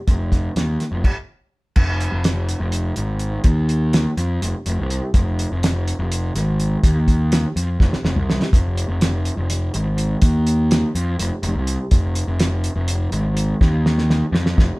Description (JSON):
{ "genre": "psychedelic rock", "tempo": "248 BPM (eighths)", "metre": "7/8", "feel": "straight", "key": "F minor", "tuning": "A4 = 440 Hz", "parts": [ { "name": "fuzz picked electric bass", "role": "bass", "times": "0.1-14.7 s", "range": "F1 to F2", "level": "-19 LUFS", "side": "equal", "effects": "overdrive" }, { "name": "cloth-damped thuddy drum kit", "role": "drums", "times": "0.1-14.7 s", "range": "crash cymbal, hi-hat, kick drum, snare drum, toms", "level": "-18 LUFS", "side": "equal", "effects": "none" } ], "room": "light reverb", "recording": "band playing live in one room", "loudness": "-17 LUFS", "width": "side -23 dB against mid", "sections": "0.0-1.8 A section; 1.8-14.8 B section", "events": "stop 1.0-1.8; drum fill 7.8-8.5, 13.6-14.8", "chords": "none" }